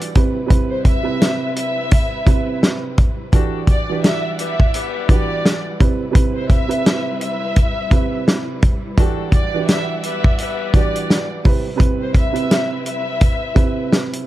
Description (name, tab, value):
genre	hip hop, boom-bap hip-hop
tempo	85 BPM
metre	4/4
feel	swing 59% on 16ths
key	unclear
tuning	A4 = 440 Hz
part	dark upright piano	accompaniment	0.0-14.3 s	C3 to B4	-24 LUFS	right 6 dB	high-pass filter, low-pass filter
part	warm symphonic string section	sustained chords	0.0-14.3 s	G3 to F#5	-31 LUFS	left 2 dB	high-pass filter, low-pass filter
part	warm soul drum kit	drums	0.0-14.3 s	hi-hat, kick drum, snare drum	-15 LUFS	equal	none
part	warm studio violin section	melody	0.7-13.9 s	C5 to E5	-24 LUFS	left 1 dB	high-pass filter, low-pass filter, slapback echo
part	clear saxophone section	stabs	3.3-11.3 s	B3 to D5	-30 LUFS	left 14 dB	high-pass filter, low-pass filter, slapback echo
room	small room ambience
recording	dark, warm production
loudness	-15 LUFS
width	side -14 dB against mid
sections	0.0-14.3 A section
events	none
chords	0.2 Cmaj7; 3.3 Em9; 5.8 Cmaj7; 9.0 Em9; 11.4 Cmaj7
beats	| 0.51 1.21 1.92 2.62 | 3.33 4.04 4.74 5.45 | 6.15 6.86 7.57 8.27 | 8.98 9.68 10.39 11.09 | 11.80 12.51 13.21 13.92